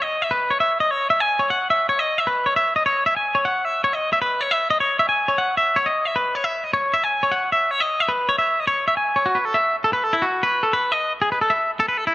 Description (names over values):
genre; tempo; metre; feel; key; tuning
rock; 154 BPM; 5/4; straight; unclear; A4 = 440 Hz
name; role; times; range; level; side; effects
twangy electric guitar; solo; 0.0-12.1 s; E4 to G#5; -18 LUFS; equal; spring reverb
room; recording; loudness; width
light reverb; faint mains hum; -18 LUFS; side -17 dB against mid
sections
0.0-9.3 A section; 9.3-12.1 B section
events
none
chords
none